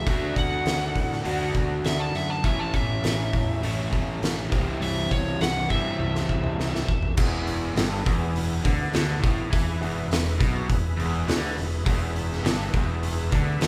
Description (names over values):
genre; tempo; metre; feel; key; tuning
blues rock power trio and southern rock; 102 BPM; 4/4; straight; E mixolydian; A4 = 441 Hz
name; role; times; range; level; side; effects
overdriven slide guitar; melody; 0.0-7.1 s; C#5 to A5; -33 LUFS; equal; none
overdriven semi-hollow guitar; riff; 0.0-13.7 s; E2 to F#4; -30 LUFS; equal; none
fuzz fingered electric bass; bass; 0.0-13.7 s; E1 to A2; -33 LUFS; equal; overdrive
oversized low-tuned drum kit; drums; 0.1-13.7 s; crash cymbal, hi-hat, kick drum, snare drum, toms; -29 LUFS; equal; none
overdriven tonewheel organ; sustained chords; 7.2-13.7 s; B3 to E5; -39 LUFS; equal; slow rotary speaker, chorus vibrato
room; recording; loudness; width
light reverb; band playing live in one room; -25 LUFS; mono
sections
0.0-7.2 A section; 7.2-13.7 B section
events
drum fill 6.0-7.2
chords
0.1 D; 2.4 A; 4.5 C; 7.2 E